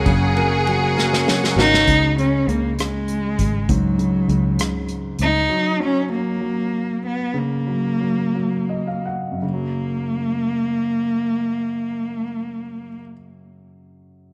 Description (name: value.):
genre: six-eight pop ballad.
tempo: 53-67 BPM (dotted quarters).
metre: 6/8.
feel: straight.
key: F# major.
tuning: A4 = 440 Hz.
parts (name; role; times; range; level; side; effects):
warm studio violin section; second line; 0.0-1.9 s; F#4 to G#4; -25 LUFS; equal; slapback echo.
warm concert grand piano; accompaniment; 0.0-14.3 s; F#2 to F#5; -27 LUFS; equal; none.
percussive tonewheel organ; sustained chords; 0.0-1.8 s; A#4 to C#6; -31 LUFS; equal; chorus vibrato, slow rotary speaker.
picked steel-string acoustic guitar; arpeggios; 0.0-1.9 s; F#2 to F#4; -27 LUFS; equal; none.
fingered electric bass; bass; 0.0-5.5 s; F#1 to C#2; -25 LUFS; equal; none.
unplugged drum kit; drums; 0.1-5.3 s; hi-hat, kick drum, ride cymbal, rim click, snare drum; -26 LUFS; equal; none.
rich cello; melody; 1.6-13.0 s; F#3 to D#4; -23 LUFS; equal; none.
room: moderate echo chamber reverb, RT60 2.4 s.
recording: none.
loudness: -20 LUFS.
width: mono.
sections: 0.0-1.9 A section; 1.9-9.4 B section; 9.4-13.9 C section.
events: drum fill 1.0-1.9; slowing down 5.5-9.4; grand piano fill 8.4-9.4.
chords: 0.0 F#; 1.9 C#sus4; 5.5 F#.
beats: | 0.06 0.96 | 1.88 2.79 | 3.69 4.60 | 5.50 6.41 | 7.35 8.35 | 9.43 10.56 | 11.68 12.81.